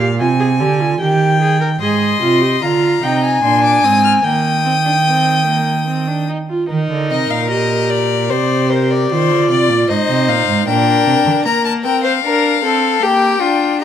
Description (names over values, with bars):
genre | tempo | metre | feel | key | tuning
classical, baroque-style fugue for string quartet | 75 BPM | 3/4 | straight | Eb major | A4 = 440 Hz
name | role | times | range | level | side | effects
rich violin | second line | 0.0-13.8 s | F4 to Ab5 | -17 LUFS | left 2 dB | none
clear viola | accompaniment | 0.0-13.8 s | Bb3 to Bb4 | -18 LUFS | right 2 dB | none
warm cello | bass | 0.0-11.3 s | Ab2 to Eb3 | -18 LUFS | right 4 dB | none
clear violin | melody | 1.8-13.8 s | Bb4 to F6 | -18 LUFS | left 10 dB | none
room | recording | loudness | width
moderate scoring stage reverb, RT60 1.7 s | close, detailed microphones | -12 LUFS | side -9 dB against mid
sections
0.0-1.8 A section; 1.8-6.7 B section; 6.7-13.8 C section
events
none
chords
0.0 Fm; 1.0 Ebadd11; 1.8 Fm7/Ab; 3.4 Bb7; 4.2 Eb; 8.3 C5; 9.1 Ab; 10.7 Bb6; 13.0 Gm/Bb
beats
0.20 1.00 | 1.81 2.62 3.43 | 4.24 5.06 5.88 | 6.70 7.50 8.30 | 9.10 9.89 10.67 | 11.45 12.24 13.03 | 13.81